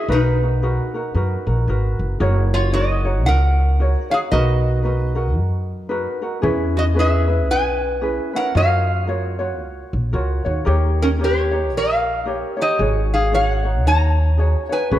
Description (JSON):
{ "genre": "Hawaiian", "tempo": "113 BPM", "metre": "4/4", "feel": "swing 60% on 8ths", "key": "F# major", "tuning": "A4 = 440 Hz", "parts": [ { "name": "metal-body resonator slide guitar", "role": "melody", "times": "0.0-14.9 s", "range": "C#4 to A#5", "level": "-21 LUFS", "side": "equal", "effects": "none" }, { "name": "ukulele", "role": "accompaniment", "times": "0.0-15.0 s", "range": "C#4 to C#5", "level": "-24 LUFS", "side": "equal", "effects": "none" }, { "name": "upright bass", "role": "bass", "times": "0.1-15.0 s", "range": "F#1 to F#2", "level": "-19 LUFS", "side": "equal", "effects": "none" } ], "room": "light reverb", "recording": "dark, warm production", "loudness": "-17 LUFS", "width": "side -13 dB against mid", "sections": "0.0-2.2 A section; 2.2-15.0 B section", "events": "none", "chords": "0.1 Bmaj7; 2.2 F#6; 4.3 Bmaj7; 6.4 E6; 8.5 F#maj7; 10.7 D#7; 12.8 G#7sus4" }